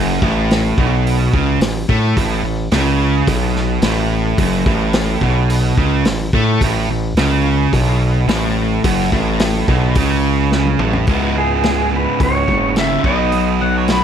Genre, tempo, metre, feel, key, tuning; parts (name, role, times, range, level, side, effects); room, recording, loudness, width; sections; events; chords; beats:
classic rock; 108 BPM; 4/4; straight; A4 = 440 Hz
overdriven electric guitar; riff; 0.0-14.0 s; C#2 to B4; -19 LUFS; right 10 dB
sludgy distorted guitar; riff; 0.0-14.0 s; C#2 to B3; -20 LUFS; left 9 dB; overdrive
growling FM bass; bass; 0.0-14.0 s; F#1 to A2; -20 LUFS; equal
vintage drum kit; drums; 0.2-14.0 s; hi-hat, kick drum, snare drum, toms; -20 LUFS; equal
clean lap steel guitar; melody; 11.4-13.6 s; G#4 to E5; -19 LUFS; equal; tape echo
octave-fuzz lead guitar; second line; 13.6-14.0 s; B4 to F#5; -18 LUFS; left 3 dB; distortion
light reverb; -13 LUFS; side -8 dB against mid
0.0-11.1 A section; 11.1-14.0 B section
drum fill 10.5-11.1
0.0 F#madd11; 11.1 C#m7; 13.0 B
0.49 1.05 1.60 | 2.16 2.71 3.27 3.83 | 4.38 4.94 5.50 6.05 | 6.61 7.17 7.73 8.29 | 8.85 9.40 9.96 10.52 | 11.08 11.64 12.20 12.77 | 13.33 13.89